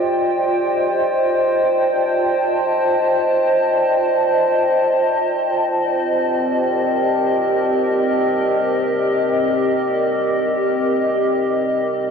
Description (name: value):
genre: ambient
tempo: free time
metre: none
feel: none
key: C dorian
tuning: A4 = 441 Hz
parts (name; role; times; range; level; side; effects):
- warbly tape-like pad; solo; 0.0-12.1 s; C4 to A5; -16 LUFS; equal; chorus, built-in reverb, ping-pong delay
room: wet huge ambient reverb, RT60 7.6 s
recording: worn, warbling old tape, cassette tape, warbly pitch drift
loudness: -16 LUFS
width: side -6 dB against mid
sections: 0.0-12.1 A section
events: none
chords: 0.0 F13; 5.6 Cm7